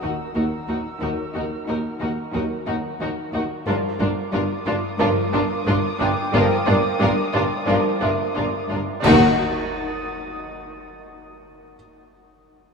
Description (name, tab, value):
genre	cinematic, suspense film score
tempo	90 BPM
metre	4/4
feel	straight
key	unclear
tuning	A4 = 439 Hz
part	muted studio violin section	melody	0.0-9.4 s	Bb4	-32 LUFS	equal	none
part	muted studio violin section	second line	0.0-9.4 s	F4 to Gb4	-27 LUFS	left 2 dB	none
part	muted studio viola section	accompaniment	0.0-9.4 s	D4 to Eb4	-27 LUFS	right 1 dB	none
part	muted symphonic cello section	riff	0.0-8.9 s	G2 to Eb4	-30 LUFS	left 2 dB	none
part	muted studio cello section	bass	0.0-9.4 s	Eb2 to G2	-26 LUFS	right 1 dB	none
part	muted studio double bass section	bass	0.0-9.4 s	G1 to Eb2	-26 LUFS	equal	none
part	felt-muted upright piano	texture	0.0-9.1 s	Fb5 to Eb6	-33 LUFS	right 3 dB	none
part	muted studio violin section	texture	0.0-11.4 s	Bb5 to A6	-34 LUFS	left 1 dB	none
part	mellow French horn section	sustained chords	1.0-9.3 s	F3 to Bb4	-27 LUFS	equal	none
part	clash cymbals and concert bass drum	percussion	9.0-10.4 s	none	-34 LUFS	right 1 dB	none
part	timpani	percussion	9.0-9.4 s	Eb3	-31 LUFS	left 8 dB	none
room	wet cathedral reverb, RT60 5.2 s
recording	in a vast, echoing space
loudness	-19 LUFS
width	side -5 dB against mid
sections	0.0-9.0 A section; 9.0-11.7 B section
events	band accent 9.0-9.7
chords	0.0 Ebm; 3.7 Gm7; 9.0 N.C.